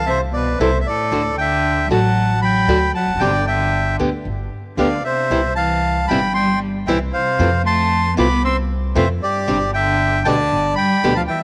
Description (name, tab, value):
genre	tango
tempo	115 BPM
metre	4/4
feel	rubato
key	unclear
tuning	A4 = 440 Hz
part	bandoneon	melody	0.0-11.4 s	G4 to E6	-21 LUFS	equal	none
part	warm cello	second line	0.0-11.4 s	G2 to C4	-26 LUFS	equal	none
part	upright bass	bass	0.0-11.3 s	E1 to F2	-24 LUFS	equal	none
part	nylon-string guitar	accompaniment	0.6-11.1 s	B2 to A4	-25 LUFS	equal	none
room	light reverb, small room ambience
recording	none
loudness	-18 LUFS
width	mono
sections	0.0-11.4 A section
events	none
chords	0.0 Am/C; 1.1 D; 3.2 Gsus4; 4.3 G5; 5.3 C; 7.4 Fmaj7; 9.5 Gsus4; 10.5 G